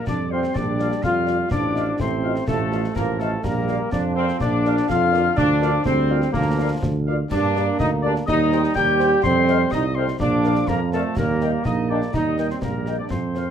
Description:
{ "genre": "military-style march for wind band", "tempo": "124 BPM", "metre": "2/4", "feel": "straight", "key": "Bb major", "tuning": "A4 = 441 Hz", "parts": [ { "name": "mellow wooden piccolo", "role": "second line", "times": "0.0-13.5 s", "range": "A5 to G6", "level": "-29 LUFS", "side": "left 6 dB", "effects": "none" }, { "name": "warm woodwind section", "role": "second line", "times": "0.0-13.5 s", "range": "A4 to G5", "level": "-29 LUFS", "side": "left 3 dB", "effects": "none" }, { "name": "clear trombone section", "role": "sustained chords", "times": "0.0-13.5 s", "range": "A3 to G4", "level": "-23 LUFS", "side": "right 1 dB", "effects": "none" }, { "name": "clear euphonium", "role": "second line", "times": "0.1-13.5 s", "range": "D3 to Bb3", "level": "-30 LUFS", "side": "right 4 dB", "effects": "none" }, { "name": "mellow tuba", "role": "bass", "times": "0.1-13.5 s", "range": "A1 to G2", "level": "-23 LUFS", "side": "right 3 dB", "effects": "none" }, { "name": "concert snare drum, concert bass drum and clash cymbals", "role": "drums", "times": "0.1-13.5 s", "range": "none", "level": "-30 LUFS", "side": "left 2 dB", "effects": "none" }, { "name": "dark trumpet section", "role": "melody", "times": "0.3-13.4 s", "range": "D5 to G5", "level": "-35 LUFS", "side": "equal", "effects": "none" }, { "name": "mellow French horn section", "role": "accompaniment", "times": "0.3-13.4 s", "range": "F4 to Eb5", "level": "-30 LUFS", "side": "left 5 dB", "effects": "none" } ], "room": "light reverb", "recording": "close, detailed microphones", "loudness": "-18 LUFS", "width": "side -8 dB against mid", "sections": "0.0-13.5 A section", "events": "none", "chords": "0.0 Bb; 1.5 F7/A; 3.4 Bb; 5.4 Bb/D; 7.3 Gm; 8.3 Cm/Eb; 9.2 F7; 10.2 Bb; 11.2 Eb" }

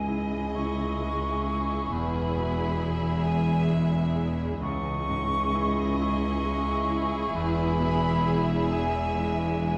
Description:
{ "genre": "cinematic", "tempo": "44 BPM (dotted quarters)", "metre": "6/8", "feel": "rubato", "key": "C# minor", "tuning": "A4 = 440 Hz", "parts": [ { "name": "rich studio violin section", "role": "melody", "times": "0.0-9.8 s", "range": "D#5 to E5", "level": "-44 LUFS", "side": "equal", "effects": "none" }, { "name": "rich studio violin section", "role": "second line", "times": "0.0-9.8 s", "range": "G#4", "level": "-39 LUFS", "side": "equal", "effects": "none" }, { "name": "silver concert flute", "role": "second line", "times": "0.0-9.8 s", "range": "G#5 to C#6", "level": "-34 LUFS", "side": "equal", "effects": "none" }, { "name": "bright concert grand piano", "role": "accompaniment", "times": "0.0-9.8 s", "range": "C#2 to G#4", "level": "-36 LUFS", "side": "equal", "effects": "none" }, { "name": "warm studio viola section", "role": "accompaniment", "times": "0.0-9.8 s", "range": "E4", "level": "-40 LUFS", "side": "equal", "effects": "none" }, { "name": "concert harp", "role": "arpeggios", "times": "0.0-9.8 s", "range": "C#3 to G#4", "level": "-36 LUFS", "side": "equal", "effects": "none" }, { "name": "clear studio cello section", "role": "bass", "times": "0.0-9.8 s", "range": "C#2 to E2", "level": "-34 LUFS", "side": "equal", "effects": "none" }, { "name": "rich studio double bass section", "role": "bass", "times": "0.0-9.8 s", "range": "E1 to C#2", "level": "-33 LUFS", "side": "equal", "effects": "none" } ], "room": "wet scoring stage reverb, RT60 1.9 s", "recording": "heard from further back in the room", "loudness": "-27 LUFS", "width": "mono", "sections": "0.0-9.8 A section", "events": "none", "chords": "0.0 C#madd9; 1.9 E; 4.6 C#madd9; 7.4 E" }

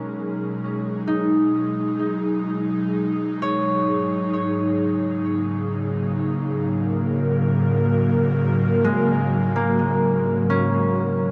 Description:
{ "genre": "ambient", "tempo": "66 BPM", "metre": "4/4", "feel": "straight", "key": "unclear", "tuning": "A4 = 440 Hz", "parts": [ { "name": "airy breathy pad", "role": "sustained chords", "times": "0.0-11.3 s", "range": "G#2 to A#4", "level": "-23 LUFS", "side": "equal", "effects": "chorus" }, { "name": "concert harp", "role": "arpeggios", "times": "0.0-11.3 s", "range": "G#3 to C#5", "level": "-27 LUFS", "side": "equal", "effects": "tape echo" } ], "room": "wet huge ambient reverb, RT60 7.2 s", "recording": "dark, warm production", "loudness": "-22 LUFS", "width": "mono", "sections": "0.0-11.1 A section", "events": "fade-in on analog synth pad 0.0-11.1", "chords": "0.0 G#m7; 3.7 F#/G#" }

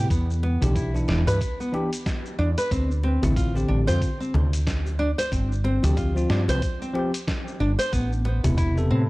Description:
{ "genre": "organic downtempo", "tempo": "92 BPM", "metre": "4/4", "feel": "swing 58% on 16ths", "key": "D dorian", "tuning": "A4 = 441 Hz", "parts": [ { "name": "bell-like tine electric piano", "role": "accompaniment", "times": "0.0-9.1 s", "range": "C3 to B4", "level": "-27 LUFS", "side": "left 1 dB", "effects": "sidechain pumping, analog delay" }, { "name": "nylon-string guitar", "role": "arpeggios", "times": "0.0-9.0 s", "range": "B3 to C5", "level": "-28 LUFS", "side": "equal", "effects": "analog delay" }, { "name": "woody fretless electric bass", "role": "bass", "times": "0.0-9.1 s", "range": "E1 to A2", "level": "-23 LUFS", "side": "equal", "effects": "sidechain pumping" }, { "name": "dusty soul sampler-style drum kit", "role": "drums", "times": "0.1-8.9 s", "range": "congas, hi-hat, shaker, snare drum", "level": "-32 LUFS", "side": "left 1 dB", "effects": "none" }, { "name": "electronic kick drum", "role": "drums", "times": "0.1-8.7 s", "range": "none", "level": "-28 LUFS", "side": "equal", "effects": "none" }, { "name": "djembe", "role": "percussion", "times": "0.4-8.9 s", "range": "none", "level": "-35 LUFS", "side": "equal", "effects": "none" } ], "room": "light reverb", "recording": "dry, gritty hardware recording, cassette tape", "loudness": "-21 LUFS", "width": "side -21 dB against mid", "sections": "0.0-9.1 A section", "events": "none", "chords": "0.1 Em7; 2.7 Dm7; 5.3 G7sus4; 7.9 Amadd9" }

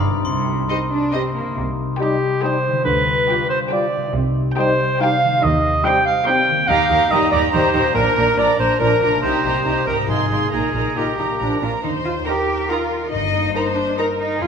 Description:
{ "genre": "cinematic, playful, whimsical film cue", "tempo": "141 BPM", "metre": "3/4", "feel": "straight", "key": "C minor, Eb major from 6.7 s", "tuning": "A4 = 439 Hz", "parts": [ { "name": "glockenspiel with brass mallets", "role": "melody", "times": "0.0-1.3 s", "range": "B5 to C6", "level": "-29 LUFS", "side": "left 3 dB", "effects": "none" }, { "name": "concert harp", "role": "arpeggios", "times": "0.0-14.5 s", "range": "F2 to Bb5", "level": "-26 LUFS", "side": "left 5 dB", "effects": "none" }, { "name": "muted chamber cello section", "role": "bass", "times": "0.0-14.5 s", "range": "G2 to G4", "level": "-25 LUFS", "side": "right 3 dB", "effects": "none" }, { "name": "muted chamber double bass section", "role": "bass", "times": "0.0-14.5 s", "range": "F1 to Eb2", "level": "-26 LUFS", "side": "right 2 dB", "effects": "none" }, { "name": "muted chamber violin section", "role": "melody", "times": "0.7-14.1 s", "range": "Eb5 to C6", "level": "-26 LUFS", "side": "right 1 dB", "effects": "none" }, { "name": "muted chamber violin section", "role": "second line", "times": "0.7-14.5 s", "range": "F4 to Eb5", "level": "-26 LUFS", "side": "left 3 dB", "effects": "none" }, { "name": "muted chamber viola section", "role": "accompaniment", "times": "0.7-14.1 s", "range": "D4 to Bb4", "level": "-27 LUFS", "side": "right 3 dB", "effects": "none" }, { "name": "dark clarinet", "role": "second line", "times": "2.0-11.6 s", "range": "G4 to G5", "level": "-25 LUFS", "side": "equal", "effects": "none" }, { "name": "mellow cor anglais", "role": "second line", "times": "2.0-11.6 s", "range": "G4 to G5", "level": "-19 LUFS", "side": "right 2 dB", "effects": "none" }, { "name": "mellow French horn section", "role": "sustained chords", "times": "2.0-11.6 s", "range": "Eb3 to F4", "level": "-26 LUFS", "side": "left 2 dB", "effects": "none" } ], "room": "wet scoring stage reverb, RT60 1.9 s", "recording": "minimal, uncompressed stereo recording", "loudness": "-16 LUFS", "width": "side -6 dB against mid", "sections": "0.0-1.6 A section; 1.6-11.8 A section; 11.8-14.5 B section", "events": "none", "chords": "0.3 Cm; 2.9 G7/D; 4.1 Cm; 5.4 Cm/Eb; 6.7 Eb; 8.0 Bb; 9.2 Cm7; 10.1 Fm7/Ab; 10.5 Eb/Bb; 11.4 Bb; 11.8 Eb; 13.1 Eb/G" }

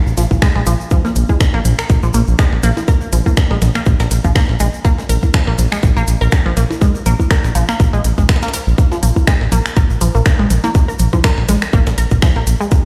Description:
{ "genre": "minimal techno", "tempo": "122 BPM", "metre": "4/4", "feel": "swing 55% on 16ths", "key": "unclear", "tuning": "A4 = 436 Hz", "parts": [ { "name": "round analog bass", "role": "bass", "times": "0.1-12.6 s", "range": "Bb1", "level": "-17 LUFS", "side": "equal", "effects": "tube saturation, sidechain pumping" }, { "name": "tube shaker", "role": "percussion", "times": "0.1-12.8 s", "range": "none", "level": "-34 LUFS", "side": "equal", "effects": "none" }, { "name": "resonant blip pluck", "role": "riff", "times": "0.2-12.7 s", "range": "F3 to Bb4", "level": "-23 LUFS", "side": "equal", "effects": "phaser, sidechain pumping, dub echo" }, { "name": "breakbeat sampler-style drum kit", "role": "drums", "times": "0.2-12.8 s", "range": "hi-hat, shaker, snare drum", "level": "-30 LUFS", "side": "equal", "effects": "high-pass filter on perc, high-pass filter on snare, high-pass filter on hats, high-pass filter on room" }, { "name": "garage drum kit", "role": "drums", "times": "0.2-12.6 s", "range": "finger snaps, hi-hat", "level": "-25 LUFS", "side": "equal", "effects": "none" }, { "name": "electronic kick drum", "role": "drums", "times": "0.3-12.8 s", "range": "none", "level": "-15 LUFS", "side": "equal", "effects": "none" }, { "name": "bongos, congas and woodblock", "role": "percussion", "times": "0.3-12.8 s", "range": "none", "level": "-27 LUFS", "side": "equal", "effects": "overdrive, dub echo" } ], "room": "little or no reverb", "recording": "played on a big sound system in a bare room, stone room reverb, faint mains hum", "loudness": "-14 LUFS", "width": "mono", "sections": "0.0-12.8 A section", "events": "none", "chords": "0.0 Bb5" }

